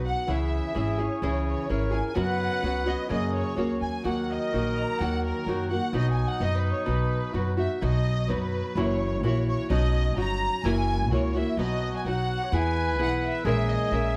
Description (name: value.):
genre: mexican folk, mariachi.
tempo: 128 BPM.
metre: 2/4.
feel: rubato.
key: B major.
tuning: A4 = 440 Hz.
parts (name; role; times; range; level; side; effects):
warm studio violin section; melody; 0.0-14.2 s; A#4 to A#5; -34 LUFS; equal; none.
nylon-string guitar; accompaniment; 0.0-14.2 s; F#2 to A#4; -32 LUFS; equal; none.
upright bass; bass; 0.0-14.2 s; F#1 to F#2; -30 LUFS; equal; none.
mellow trumpet; second line; 0.3-7.8, 11.6-14.2 s; D#4 to C#5; -35 LUFS; equal; none.
room: light reverb.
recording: close, detailed microphones.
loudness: -27 LUFS.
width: mono.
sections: 0.3-7.8 A section; 7.8-14.2 B section.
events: none.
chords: 0.3 C#m; 2.2 F#sus4; 3.1 F#; 4.0 D#m; 5.9 B; 8.8 F#7; 9.7 Badd9; 10.6 F#7; 11.6 B; 12.5 E; 13.5 A#m7b5.